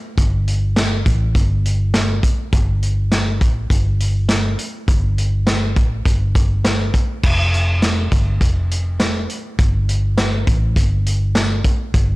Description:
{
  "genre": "dream pop",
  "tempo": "102 BPM",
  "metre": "4/4",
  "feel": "straight",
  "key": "unclear",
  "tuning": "A4 = 440 Hz",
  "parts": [
    { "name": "vintage muted fingered electric bass", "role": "bass", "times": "0.2-12.2 s", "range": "F1 to A1", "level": "-18 LUFS", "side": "equal", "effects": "tube saturation" },
    { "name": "vintage drum kit", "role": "drums", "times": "0.2-12.1 s", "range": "crash cymbal, hi-hat, kick drum, snare drum, tambourine", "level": "-17 LUFS", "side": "equal", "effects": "none" }
  ],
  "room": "little or no reverb",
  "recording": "blown-out, overdriven recording, overdrive",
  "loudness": "-15 LUFS",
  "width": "side -21 dB against mid",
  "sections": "0.0-7.2 A section; 7.2-12.2 B section",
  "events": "none",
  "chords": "none"
}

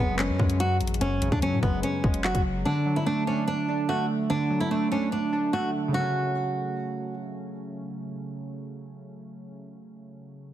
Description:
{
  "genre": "hip hop, drill",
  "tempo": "146 BPM",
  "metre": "4/4",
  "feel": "half-time",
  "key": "F# minor",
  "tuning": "A4 = 440 Hz",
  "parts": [
    { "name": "flamenco guitar", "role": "melody", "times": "0.0-7.1 s", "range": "B3 to F#4", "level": "-28 LUFS", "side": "right 1 dB", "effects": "digital delay" },
    { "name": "glassy digital keys", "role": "accompaniment", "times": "0.0-10.5 s", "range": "F#2 to D4", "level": "-29 LUFS", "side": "right 1 dB", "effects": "chorus" },
    { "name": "long sustained 808-style bass", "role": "bass", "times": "0.0-2.6 s", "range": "F#1 to A2", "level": "-29 LUFS", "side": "left 1 dB", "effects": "none" },
    { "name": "drill drum kit", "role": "drums", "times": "0.2-2.4 s", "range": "handclaps, hi-hat, kick drum", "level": "-27 LUFS", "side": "left 1 dB", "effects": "none" }
  ],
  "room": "light reverb, digital ambience",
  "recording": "heavily compressed radio sound",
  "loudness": "-24 LUFS",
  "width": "side -12 dB against mid",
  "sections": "0.0-5.9 A section; 5.9-9.2 B section",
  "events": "none",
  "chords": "0.0 F#sus2; 2.7 D; 5.9 F#m"
}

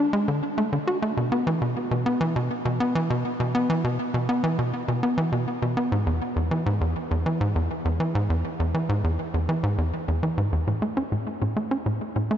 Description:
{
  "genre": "ambient",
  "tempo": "101 BPM",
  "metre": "4/4",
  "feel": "straight",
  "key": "unclear",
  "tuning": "A4 = 440 Hz",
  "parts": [
    { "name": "tight sequencer bass", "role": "solo", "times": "0.0-12.4 s", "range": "E2 to F#4", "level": "-23 LUFS", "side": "equal", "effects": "tape echo" }
  ],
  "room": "moderate huge ambient reverb, RT60 8.6 s",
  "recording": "nothing above 7.8 kHz",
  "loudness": "-23 LUFS",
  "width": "side -10 dB against mid",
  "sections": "0.0-12.4 A section",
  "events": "none",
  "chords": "none"
}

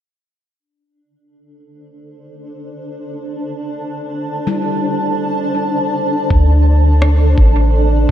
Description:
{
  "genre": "ambient dub",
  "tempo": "free time",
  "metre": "none",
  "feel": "none",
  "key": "unclear",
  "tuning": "A4 = 441 Hz",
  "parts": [
    { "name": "granular cloud pad", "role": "sustained chords", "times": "2.5-8.1 s", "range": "D4 to A5", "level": "-19 LUFS", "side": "right 1 dB", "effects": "built-in reverb" },
    { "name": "handpan", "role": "arpeggios", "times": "4.5-6.2 s", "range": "G3 to E4", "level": "-24 LUFS", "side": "left 4 dB", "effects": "low-pass filter, ping-pong delay" },
    { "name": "soft dub sub bass", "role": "bass", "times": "6.3-8.1 s", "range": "A1 to D2", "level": "-11 LUFS", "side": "equal", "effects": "none" },
    { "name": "electronic kick drum", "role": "drums", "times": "6.3-8.1 s", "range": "none", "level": "-13 LUFS", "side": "equal", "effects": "none" },
    { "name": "electronic rim click", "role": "drums", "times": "7.0-7.2 s", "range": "none", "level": "-27 LUFS", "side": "left 2 dB", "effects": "overdrive, dub echo" }
  ],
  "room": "light reverb",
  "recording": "none",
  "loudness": "-13 LUFS",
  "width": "side -11 dB against mid",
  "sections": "0.6-6.3 A section; 6.3-8.1 B section",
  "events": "fade-in on ambient pad 0.6-6.3",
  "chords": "0.6 D5"
}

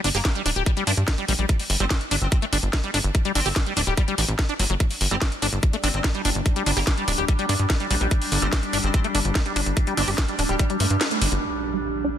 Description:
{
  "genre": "psychedelic trance",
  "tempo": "145 BPM",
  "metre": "4/4",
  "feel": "straight",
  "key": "G minor",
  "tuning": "A4 = 440 Hz",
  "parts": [
    { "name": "liquid acid bass", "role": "riff", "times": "0.0-12.1 s", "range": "F#3 to G4", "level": "-27 LUFS", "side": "moving between left 3 dB and right 4 dB", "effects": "chorus, auto-pan, sidechain pumping, digital delay" },
    { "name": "plucky analog bass", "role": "bass", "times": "0.0-11.4 s", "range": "D1 to G2", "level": "-24 LUFS", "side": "equal", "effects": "none" },
    { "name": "drum and bass drum kit", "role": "drums", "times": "0.0-11.4 s", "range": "hi-hat, snare drum", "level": "-26 LUFS", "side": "equal", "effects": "none" },
    { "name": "metallic wobble bass", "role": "second line", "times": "0.1-10.7 s", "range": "G3 to C4", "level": "-35 LUFS", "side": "left 2 dB", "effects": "lush chorus, sidechain pumping, high-pass filter, digital delay" },
    { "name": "electronic kick drum", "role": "drums", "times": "0.2-10.7 s", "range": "none", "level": "-22 LUFS", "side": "equal", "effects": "none" },
    { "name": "overtone-sweeping drone", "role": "sustained chords", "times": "5.5-12.2 s", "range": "G3 to D4", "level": "-28 LUFS", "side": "equal", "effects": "chorus, built-in reverb, sidechain pumping" },
    { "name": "impact", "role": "sound effects", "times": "11.4-12.2 s", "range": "none", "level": "-33 LUFS", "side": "equal", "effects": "none" }
  ],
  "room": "little or no reverb",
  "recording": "dense, heavily limited modern master",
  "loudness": "-20 LUFS",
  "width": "side -10 dB against mid",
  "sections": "0.0-11.4 A section",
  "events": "kick drops out 11.0-11.4; band accent 11.0; impact 11.4-12.2",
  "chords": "0.0 G5"
}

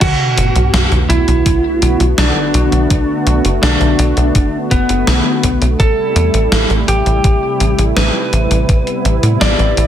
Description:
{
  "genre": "synthwave",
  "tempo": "83 BPM",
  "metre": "4/4",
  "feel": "straight",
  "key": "B phrygian",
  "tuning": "A4 = 443 Hz",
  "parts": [
    { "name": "lightly driven lead guitar", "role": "melody", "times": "0.0-9.9 s", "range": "B3 to D5", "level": "-17 LUFS", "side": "equal", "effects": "ping-pong delay" },
    { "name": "warm analog pad", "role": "sustained chords", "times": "0.0-9.9 s", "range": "C3 to F#4", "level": "-19 LUFS", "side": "right 1 dB", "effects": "chorus, sidechain pumping" },
    { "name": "tight sequencer bass", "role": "bass", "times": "0.0-9.9 s", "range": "F#1 to A2", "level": "-14 LUFS", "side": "equal", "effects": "tube saturation, sidechain pumping" },
    { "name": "electronic kick drum", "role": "drums", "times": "0.0-8.8 s", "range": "none", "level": "-14 LUFS", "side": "equal", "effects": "none" },
    { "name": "gated 80s digital drum machine", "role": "drums", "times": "0.0-9.9 s", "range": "crash cymbal, hi-hat, snare drum", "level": "-18 LUFS", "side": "equal", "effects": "gated reverb, gated reverb snare" },
    { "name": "sub drop", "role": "sound effects", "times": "0.0-2.9 s", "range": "none", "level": "-22 LUFS", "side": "equal", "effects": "none" }
  ],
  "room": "digital ambience",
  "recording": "none",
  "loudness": "-11 LUFS",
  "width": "side -10 dB against mid",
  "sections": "0.0-9.9 A section",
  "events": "impact 0.0-2.9",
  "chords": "0.0 Bm7; 5.8 Am7"
}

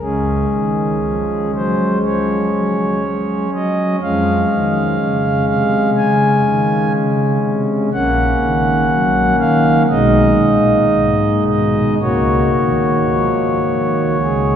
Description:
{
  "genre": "classical, chorale-style piece for pipe organ",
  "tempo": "60 BPM",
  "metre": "4/4",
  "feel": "uneven beats, rubato",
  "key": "Db major, F# major from 7.9 s",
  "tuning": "A4 = 440 Hz",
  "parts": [
    { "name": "pipe organ, principal", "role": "solo", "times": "0.0-14.6 s", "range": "A#1 to Ab5", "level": "-13 LUFS", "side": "equal", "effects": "none" }
  ],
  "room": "wet cathedral reverb, RT60 6.8 s",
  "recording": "heard from further back in the room",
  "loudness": "-13 LUFS",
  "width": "side -8 dB against mid",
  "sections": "0.0-14.6 A section",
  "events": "none",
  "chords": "0.0 Db; 4.0 Db/F; 7.9 F#/A#; 9.9 G#m/B; 12.0 F#/C#"
}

